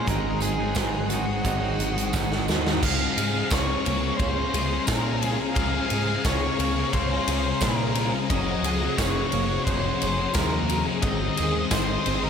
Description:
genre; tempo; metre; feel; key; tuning
rock, shoegaze and dream pop; 88 BPM; 4/4; straight; Db major; A4 = 440 Hz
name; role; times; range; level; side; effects
octave-fuzz lead guitar; melody; 0.0-12.3 s; Gb4 to F5; -30 LUFS; left 1 dB; distortion, tape echo
string machine, violas; sustained chords; 0.0-12.3 s; Ab4 to Eb6; -33 LUFS; right 1 dB; phaser, ensemble chorus
picked twelve-string acoustic guitar; arpeggios; 0.0-12.3 s; Eb3 to Ab4; -33 LUFS; right 4 dB; ensemble chorus, tape echo
direct-recorded clean electric guitar; riff; 0.0-2.8 s; Ab2 to Eb4; -30 LUFS; right 8 dB; reverse reverb
thick fuzz guitar; riff; 0.0-12.3 s; Gb2 to Db4; -29 LUFS; left 8 dB; distortion, analog chorus
picked electric bass; bass; 0.0-12.3 s; Gb1 to Bb2; -29 LUFS; equal; none
huge arena drum kit; drums; 0.1-12.2 s; crash cymbal, hi-hat, kick drum, ride cymbal, snare drum; -27 LUFS; equal; none
tambourine; percussion; 0.1-11.9 s; none; -39 LUFS; right 10 dB; none
room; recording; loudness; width
moderate lush hall reverb, RT60 2.6 s; dreamy mix soaked in reverb; -22 LUFS; side -7 dB against mid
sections
0.0-2.8 A section; 2.8-12.3 B section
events
drum fill 2.1-2.8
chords
0.1 Ab7; 2.8 Db6; 8.3 Gbadd9; 11.0 Ab

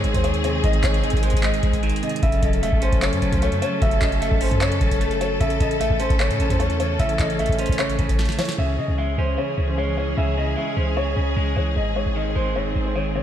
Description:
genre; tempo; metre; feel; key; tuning
hip hop, trap; 151 BPM; 4/4; half-time; C# harmonic minor; A4 = 441 Hz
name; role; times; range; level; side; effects
dark grand piano; melody; 0.0-13.2 s; B#4 to E5; -26 LUFS; left 1 dB; diffuse ambient delay
clean electric guitar; accompaniment; 0.0-13.2 s; G#2 to C#4; -28 LUFS; right 6 dB; none
warm symphonic string section; sustained chords; 0.0-13.2 s; D#3 to A4; -27 LUFS; left 3 dB; none
clean 808-style bass; bass; 0.0-13.2 s; E1 to C#3; -24 LUFS; equal; none
booming analog drum machine; drums; 0.0-8.6 s; handclaps, hi-hat, kick drum, snare drum; -23 LUFS; equal; none
room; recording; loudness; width
moderate lush hall reverb, RT60 2.1 s; dreamy mix soaked in reverb; -19 LUFS; side -10 dB against mid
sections
0.0-8.6 A section; 8.6-13.2 B section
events
drum fill 8.2-8.6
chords
0.0 G#; 2.2 F#m; 5.4 A; 8.6 C#m; 11.8 G#

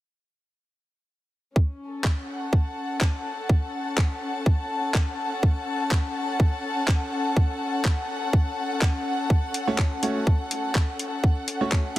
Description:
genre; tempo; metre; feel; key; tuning
bass house; 124 BPM; 4/4; swing 55% on 16ths; F# minor; A4 = 441 Hz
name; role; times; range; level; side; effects
electronic kick drum; drums; 1.6-11.8 s; none; -21 LUFS; equal; none
dark studio string section; texture; 1.6-12.0 s; C#4 to A5; -28 LUFS; left 2 dB; sidechain pumping
garage drum kit; drums; 2.0-12.0 s; handclaps, hi-hat; -30 LUFS; equal; none
clear grand piano; stabs; 9.7-12.0 s; A3 to C#5; -28 LUFS; right 2 dB; sidechain pumping, dub echo
room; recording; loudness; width
light reverb; heavily compressed radio sound; -22 LUFS; side -15 dB against mid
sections
1.6-12.0 A section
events
none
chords
1.6 F#m

